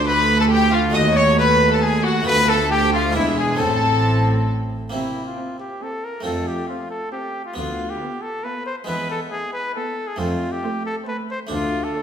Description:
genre	classical, baroque-style concerto movement with solo episodes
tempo	137 BPM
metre	3/4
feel	straight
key	unclear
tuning	A4 = 440 Hz
part	rich chamber violin section	second line	0.0-12.0 s	E4 to G5	-24 LUFS	left 2 dB	none
part	dark chamber viola section	accompaniment	0.0-12.0 s	G#3 to C4	-26 LUFS	right 2 dB	none
part	harpsichord	accompaniment	0.0-12.0 s	D2 to F#4	-28 LUFS	equal	none
part	rich chamber cello section	bass	0.0-11.9 s	D2 to C3	-25 LUFS	right 2 dB	none
part	warm chamber double bass section	bass	0.0-4.7 s	E1 to D#2	-24 LUFS	right 3 dB	none
part	clear trumpet	melody	0.1-12.0 s	E4 to D#5	-23 LUFS	left 1 dB	none
part	warm chamber violin section	melody	0.1-12.0 s	E5 to D#6	-25 LUFS	left 5 dB	none
room	wet recital hall reverb, RT60 1.2 s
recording	recorded in a church or concert hall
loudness	-18 LUFS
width	side -8 dB against mid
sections	0.0-4.9 A section; 4.9-12.0 B section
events	none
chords	0.0 Dm; 1.0 B7/D#; 2.3 Bm7b5/D; 3.2 E7; 3.6 Am; 4.9 C7; 6.3 F; 7.6 Bdim/D; 8.9 E; 10.2 F; 11.5 D5

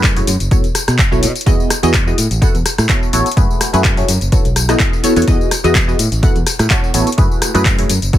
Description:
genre	filtered disco house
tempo	126 BPM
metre	4/4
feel	swing 54% on 16ths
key	unclear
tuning	A4 = 441 Hz
part	funky polysynth comp	accompaniment	0.0-8.2 s	A3 to F#5	-18 LUFS	equal	chorus, phaser, cassette tape, sidechain pumping
part	modern bright fingered electric bass	bass	0.0-8.2 s	F#1 to B2	-17 LUFS	equal	sidechain pumping
part	electronic kick drum	drums	0.0-8.2 s	none	-14 LUFS	equal	none
part	house drum kit	drums	0.0-8.2 s	handclaps, hi-hat, rim click, tambourine	-18 LUFS	left 2 dB	sidechain pumping on hats, sidechain pumping on perc
room	little or no reverb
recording	none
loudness	-11 LUFS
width	side -12 dB against mid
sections	0.0-8.2 A section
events	none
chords	0.0 F#m11; 0.5 B9sus4; 1.5 Emaj9; 2.2 A69; 3.4 F#m11; 4.3 B9sus4; 5.3 Emaj9; 6.0 A69; 7.2 F#m11

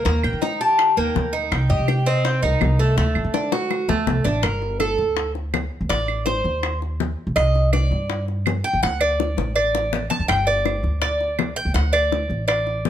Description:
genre	latin, Cuban son and guajira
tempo	164 BPM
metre	4/4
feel	straight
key	G harmonic minor from 4.4 s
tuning	A4 = 439 Hz
part	Cuban tres	arpeggios	0.0-12.9 s	A3 to A5	-22 LUFS	right 2 dB	none
part	upright bass	bass	0.0-12.9 s	G1 to Eb3	-22 LUFS	equal	none
part	Cuban tres	melody	0.1-4.0 s	A4 to Bb5	-23 LUFS	left 2 dB	plate reverb
part	bongos	percussion	0.1-12.9 s	none	-27 LUFS	left 8 dB	none
part	claves	percussion	0.2-12.7 s	none	-29 LUFS	right 6 dB	none
room	light reverb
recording	none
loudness	-18 LUFS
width	side -10 dB against mid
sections	0.0-4.4 A section; 4.4-12.9 B section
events	drum fill 3.3-4.4, 9.4-10.3; Cuban tres solo 4.4-12.9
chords	0.1 Eb; 1.5 Cm; 3.0 D; 4.4 Gm; 5.9 Adim; 7.4 Cmadd9; 8.8 D5; 10.3 G5; 11.8 D5

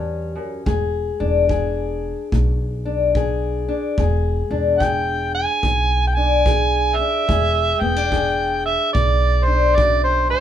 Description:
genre	acoustic country blues, solo or duo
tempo	72 BPM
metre	4/4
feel	swing 64% on 8ths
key	unclear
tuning	A4 = 440 Hz
part	fingerpicked steel-string acoustic guitar	accompaniment	0.0-10.4 s	E2 to G#4	-22 LUFS	left 5 dB	none
part	upright bass	bass	0.0-10.3 s	E1 to E2	-21 LUFS	equal	none
part	kick drum	drums	0.7-10.0 s	none	-24 LUFS	equal	none
part	overdriven harmonica	melody	4.8-10.4 s	C5 to G#5	-19 LUFS	right 3 dB	none
room	light reverb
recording	minimal, uncompressed stereo recording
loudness	-17 LUFS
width	side -10 dB against mid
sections	0.0-10.4 A section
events	none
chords	0.0 A7 (rootless); 0.7 E7

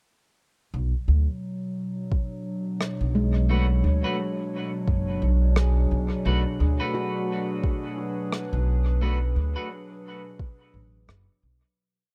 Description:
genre	ambient dub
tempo	87 BPM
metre	4/4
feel	swing 59% on 16ths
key	B dorian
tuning	A4 = 440 Hz
part	warbly tape-like pad	sustained chords	1.2-11.8 s	B2 to C#5	-33 LUFS	equal	chorus, built-in reverb
part	upright bass	bass	0.7-11.6 s	F#1 to D2	-24 LUFS	equal	none
part	electronic kick drum	drums	2.1-10.6 s	none	-28 LUFS	equal	none
part	rim click	drums	2.8-11.2 s	none	-34 LUFS	equal	dub echo
part	handpan	arpeggios	3.2-9.0 s	G#3 to G#4	-35 LUFS	equal	vintage 12-bit sampler grit, tape echo
part	clean electric guitar	stabs	3.5-9.7 s	A3 to B4	-35 LUFS	equal	harmonic tremolo, dub echo
room	little or no reverb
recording	none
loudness	-25 LUFS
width	mono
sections	0.7-11.8 groove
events	fade-out 8.1-11.8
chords	0.7 Bm7

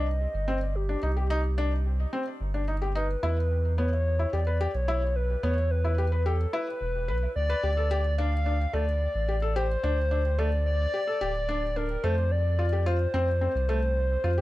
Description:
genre	IDM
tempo	109 BPM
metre	4/4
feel	straight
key	unclear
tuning	A4 = 440 Hz
part	warbly nostalgic lead	melody	0.0-14.4 s	G4 to F5	-31 LUFS	left 1 dB	chorus, ping-pong delay
part	felt-muted upright piano	arpeggios	0.0-14.4 s	A3 to B4	-33 LUFS	left 2 dB	dub echo
part	warm sub bass	bass	0.0-14.4 s	D1 to F2	-26 LUFS	equal	tube saturation
room	small room ambience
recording	none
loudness	-25 LUFS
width	side -16 dB against mid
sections	0.0-14.4 A section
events	none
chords	0.0 Cm; 3.2 E5; 7.6 D5; 12.0 F5

